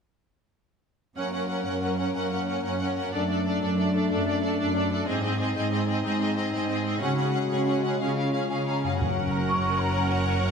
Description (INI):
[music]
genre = cinematic, heroic adventure film score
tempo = 123 BPM (dotted quarters)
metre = 12/8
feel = straight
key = F# major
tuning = A4 = 441 Hz
[part]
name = rich studio violin section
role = melody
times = 1.2-10.5 s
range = D5 to F#5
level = -34 LUFS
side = left 5 dB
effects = none
[part]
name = warm symphonic violin section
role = second line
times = 1.2-10.5 s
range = G#4 to C#5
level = -34 LUFS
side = left 1 dB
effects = none
[part]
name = rich symphonic viola section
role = accompaniment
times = 1.2-10.5 s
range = B#3 to A#4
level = -31 LUFS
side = right 3 dB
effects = none
[part]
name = clear French horn section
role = sustained chords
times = 1.2-8.8 s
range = G#3 to F#4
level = -30 LUFS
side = left 4 dB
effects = none
[part]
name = warm symphonic cello section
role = bass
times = 1.2-10.5 s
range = F#2 to C#3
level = -28 LUFS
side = right 2 dB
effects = none
[part]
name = mellow hollow large flute ensemble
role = second line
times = 8.5-10.5 s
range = F#5 to C#6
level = -30 LUFS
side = equal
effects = none
[part]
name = concert harp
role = arpeggios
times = 8.8-10.5 s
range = F#2 to C#5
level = -33 LUFS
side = left 7 dB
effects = none
[part]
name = rich symphonic double bass section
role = bass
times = 9.0-10.5 s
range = F#1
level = -30 LUFS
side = right 2 dB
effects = none
[part]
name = timpani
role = percussion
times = 9.0-9.5 s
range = F#2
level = -33 LUFS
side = left 1 dB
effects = none
[sound]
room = wet scoring stage reverb, RT60 1.7 s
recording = none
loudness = -24 LUFS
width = side -6 dB against mid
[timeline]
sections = 1.2-9.0 A section; 9.0-10.5 B section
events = none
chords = 1.2 F#; 3.1 D/F#; 5.1 G#; 7.0 C#sus4; 8.0 C#; 9.0 F#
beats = | 1.17 1.67 2.16 2.65 | 3.14 3.62 4.11 4.59 | 5.08 5.56 6.05 6.53 | 7.02 7.51 8.00 8.50 | 9.01 9.50 9.99 10.49